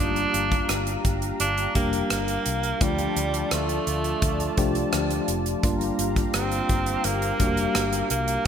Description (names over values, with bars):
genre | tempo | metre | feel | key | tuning
1980s-style pop | 85 BPM | 4/4 | straight | G minor | A4 = 438 Hz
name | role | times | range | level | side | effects
clear tenor saxophone | melody | 0.0-8.5 s | G3 to D4 | -27 LUFS | right 3 dB | ping-pong delay
tine electric piano | accompaniment | 0.0-8.5 s | F3 to G4 | -28 LUFS | left 2 dB | medium stereo tremolo
warm analog pad | sustained chords | 0.0-8.4 s | F4 to Bb5 | -32 LUFS | left 1 dB | chorus, tremolo
vintage muted fingered electric bass | bass | 0.0-8.4 s | F1 to D2 | -30 LUFS | equal | none
modern studio drum kit | drums | 0.2-8.4 s | hi-hat, kick drum, rim click | -26 LUFS | equal | gated reverb
room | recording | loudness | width
moderate lush hall reverb, RT60 3.0 s | bright 1980s-style digital production | -22 LUFS | side -8 dB against mid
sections
0.0-8.5 A section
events
none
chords
0.0 Gm7; 2.8 Dm; 5.6 Gm7